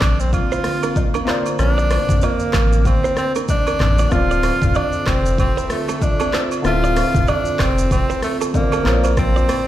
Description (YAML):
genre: afrobeats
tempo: 95 BPM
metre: 4/4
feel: swing 58% on 16ths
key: D minor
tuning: A4 = 440 Hz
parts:
  - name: breathy tenor saxophone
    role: melody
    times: 0.0-9.7 s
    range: A3 to F4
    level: -21 LUFS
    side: equal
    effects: ping-pong delay
  - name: warm grand piano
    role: accompaniment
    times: 0.0-9.7 s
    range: D3 to E5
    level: -26 LUFS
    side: left 3 dB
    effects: none
  - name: airy breathy pad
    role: sustained chords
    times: 0.0-9.7 s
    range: D3 to E5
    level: -26 LUFS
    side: right 1 dB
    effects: chorus
  - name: sub bass with octave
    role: bass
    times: 0.0-9.5 s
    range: D1 to Bb1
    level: -19 LUFS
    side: equal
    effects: none
  - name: deep house drum kit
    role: drums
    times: 0.0-9.7 s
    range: handclaps, hi-hat, kick drum, rim click, shaker, toms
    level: -20 LUFS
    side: equal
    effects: none
  - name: agogo bells and woodblock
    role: percussion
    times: 0.0-9.7 s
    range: none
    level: -30 LUFS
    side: right 5 dB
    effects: none
  - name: direct-recorded clean electric guitar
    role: riff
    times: 0.5-9.6 s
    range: C4 to D5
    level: -27 LUFS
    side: right 8 dB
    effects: spring reverb, ping-pong delay
room: light reverb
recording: played on a big sound system in a bare room, large studio reverb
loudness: -15 LUFS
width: side -13 dB against mid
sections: 0.0-9.7 A section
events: none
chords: 0.0 Bbadd9; 4.1 Dm7; 8.9 Bbadd9